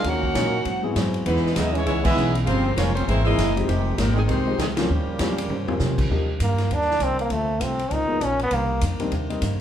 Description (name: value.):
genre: jazz, big band swing.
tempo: 198 BPM.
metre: 4/4.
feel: swing 61% on 8ths.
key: Eb major from 6.1 s.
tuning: A4 = 441 Hz.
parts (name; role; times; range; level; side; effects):
warm saxophone section; melody; 0.0-5.8 s; Eb3 to Gb5; -27 LUFS; left 2 dB; none.
bright trombone section; second line; 0.0-5.8 s; Bb2 to G4; -26 LUFS; right 2 dB; none.
hollow-body jazz guitar; accompaniment; 0.0-9.6 s; G2 to C5; -32 LUFS; left 1 dB; none.
upright bass; bass; 0.0-9.6 s; F1 to C3; -25 LUFS; equal; none.
swinging big-band drum kit; drums; 0.0-9.5 s; crash cymbal, hi-hat, kick drum, ride cymbal, snare drum, toms; -29 LUFS; equal; none.
warm grand piano; accompaniment; 0.3-9.4 s; Eb3 to Ab4; -28 LUFS; left 3 dB; none.
brilliant trombone; melody; 6.4-8.8 s; A3 to Eb4; -23 LUFS; equal; none.
room: wet large studio reverb, RT60 0.9 s.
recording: band playing live in one room.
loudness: -20 LUFS.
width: side -10 dB against mid.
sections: 0.0-6.1 A section; 6.1-9.6 B section.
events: band accent 2.0, 4.7; drum fill 5.5-5.8; trombone solo 6.1-9.6.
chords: 0.0 Ebm7; 0.7 Ab7alt; 1.3 Dbm9; 2.5 Gm7b5; 3.1 C7alt; 3.7 Fm9; 4.9 Eb13; 6.1 Ebmaj7; 7.3 Dm7; 7.9 Db13; 8.5 Cm9.